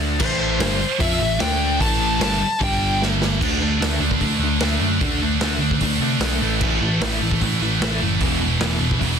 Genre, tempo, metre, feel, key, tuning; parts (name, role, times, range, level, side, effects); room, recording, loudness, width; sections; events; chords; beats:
punk rock; 150 BPM; 4/4; straight; A minor; A4 = 440 Hz
crunchy overdriven guitar; riff; 0.0-9.2 s; E2 to F4; -23 LUFS; equal
overdriven picked electric bass; bass; 0.0-9.2 s; E1 to C3; -25 LUFS; equal
bluesy overdriven lead guitar; melody; 0.2-3.0 s; C5 to A5; -23 LUFS; left 3 dB; distortion
heavy high-gain guitar; riff; 0.2-9.2 s; E2 to F4; -23 LUFS; right 2 dB; distortion
raw garage drum kit; drums; 0.2-9.1 s; crash cymbal, hi-hat, kick drum, snare drum; -24 LUFS; equal
light reverb; dense, heavily limited modern master; -17 LUFS; side -7 dB against mid
0.0-3.4 A section; 3.4-9.2 B section
drum fill 3.0-3.4
0.2 Am; 1.4 D5; 1.8 A5; 2.6 G5; 3.4 D5; 6.4 A5; 8.2 E5
| 0.21 0.61 1.01 1.41 | 1.81 2.21 2.61 3.01 | 3.41 3.81 4.21 4.62 | 5.02 5.42 5.82 6.22 | 6.62 7.02 7.42 7.82 | 8.21 8.61 9.01